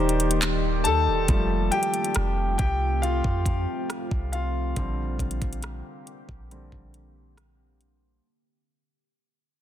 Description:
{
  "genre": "contemporary R&B",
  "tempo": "69 BPM",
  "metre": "4/4",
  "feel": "straight",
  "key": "F major",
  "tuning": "A4 = 441 Hz",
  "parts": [
    { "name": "clear concert grand piano", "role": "accompaniment", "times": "0.0-8.3 s", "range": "D3 to A5", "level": "-27 LUFS", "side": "left 2 dB", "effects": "none" },
    { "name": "deep dark ambient pad", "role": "sustained chords", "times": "0.0-8.2 s", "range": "D3 to D5", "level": "-32 LUFS", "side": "equal", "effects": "chorus, built-in reverb, sidechain pumping" },
    { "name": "warm 808-style bass", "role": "bass", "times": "0.0-8.2 s", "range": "Eb1 to F2", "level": "-27 LUFS", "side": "equal", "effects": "none" },
    { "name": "smooth R&B drum kit", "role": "drums", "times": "0.1-8.0 s", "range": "handclaps, hi-hat, kick drum, rim click", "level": "-28 LUFS", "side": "equal", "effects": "soft clipping on snare" }
  ],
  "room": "digital ambience",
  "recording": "dense, heavily limited modern master",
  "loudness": "-22 LUFS",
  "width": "side -11 dB against mid",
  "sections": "0.0-1.3 A section; 1.3-8.2 B section",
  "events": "fade-out 1.3-8.2; grand piano solo 1.3-8.2",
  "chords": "0.0 Ebmaj7; 1.3 F; 4.8 Bb69",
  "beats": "0.42 | 1.29 2.16 3.02 3.90 | 4.76 5.63 6.50 7.37"
}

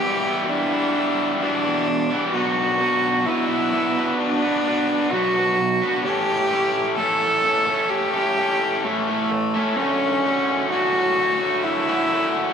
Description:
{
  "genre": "rock",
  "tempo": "65 BPM",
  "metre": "4/4",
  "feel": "straight",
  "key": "D major",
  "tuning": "A4 = 440 Hz",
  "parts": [
    { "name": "rich cello", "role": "melody", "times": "0.0-12.5 s", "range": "A3 to A4", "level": "-21 LUFS", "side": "equal", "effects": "slapback echo" },
    { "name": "raw garage guitar", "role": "riff", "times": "0.0-12.5 s", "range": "D2 to B4", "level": "-22 LUFS", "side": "equal", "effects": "overdrive, slapback echo" }
  ],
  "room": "moderate lush hall reverb, RT60 1.9 s, small room ambience",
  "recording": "big arena sound",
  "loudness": "-18 LUFS",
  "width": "side -7 dB against mid",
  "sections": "0.0-12.5 A section",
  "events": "none",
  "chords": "0.0 Em7; 2.4 Bm; 6.1 A7; 9.8 Dmaj7",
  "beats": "0.49 1.42 | 2.35 3.28 4.21 5.13 | 6.06 6.99 7.92 8.85 | 9.79 10.72 11.65"
}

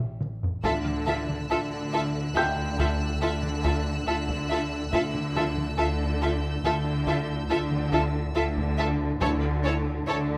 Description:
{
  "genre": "cinematic, suspense film score",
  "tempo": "70 BPM",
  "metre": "5/4",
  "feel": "straight",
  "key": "unclear",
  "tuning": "A4 = 439 Hz",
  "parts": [
    { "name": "clear symphonic violin section", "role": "melody", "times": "0.0-10.2 s", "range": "C#5 to E5", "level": "-36 LUFS", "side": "equal", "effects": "none" },
    { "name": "warm symphonic violin section", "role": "second line", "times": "0.0-10.2 s", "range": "G4 to A4", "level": "-34 LUFS", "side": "equal", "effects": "none" },
    { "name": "rich symphonic viola section", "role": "accompaniment", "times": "0.0-10.1 s", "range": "C#4 to F4", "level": "-35 LUFS", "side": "equal", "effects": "none" },
    { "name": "metallic inharmonic drone", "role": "drone", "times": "0.0-10.4 s", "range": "A1 to D2", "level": "-36 LUFS", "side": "equal", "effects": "chorus, built-in reverb" },
    { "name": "taiko ensemble", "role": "drums", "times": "0.0-10.0 s", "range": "none", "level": "-35 LUFS", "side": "equal", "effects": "none" },
    { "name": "warm grand piano", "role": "texture", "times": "0.0-9.2 s", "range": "G5 to G6", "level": "-35 LUFS", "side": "equal", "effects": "none" },
    { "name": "warm chamber double bass section", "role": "bass", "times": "0.6-10.4 s", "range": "D2", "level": "-34 LUFS", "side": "equal", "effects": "none" },
    { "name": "warm symphonic cello section", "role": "bass", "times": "0.6-10.4 s", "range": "D3", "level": "-34 LUFS", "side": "equal", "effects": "none" },
    { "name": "rich symphonic violin section", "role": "texture", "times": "0.6-8.7 s", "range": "E6 to F#6", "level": "-40 LUFS", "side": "equal", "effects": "none" },
    { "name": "timpani", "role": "percussion", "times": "9.2-10.4 s", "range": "D3", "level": "-39 LUFS", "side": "equal", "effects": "none" }
  ],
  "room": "light reverb",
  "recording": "close, detailed microphones",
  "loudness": "-27 LUFS",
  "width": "mono",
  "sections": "0.6-10.4 A section",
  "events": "drum fill 0.0-0.6",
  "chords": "0.0 A7; 0.6 Dmadd9; 9.2 A5/D",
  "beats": "| 0.64 1.50 2.35 3.21 4.07 | 4.92 5.78 6.64 7.50 8.35 | 9.21 10.07"
}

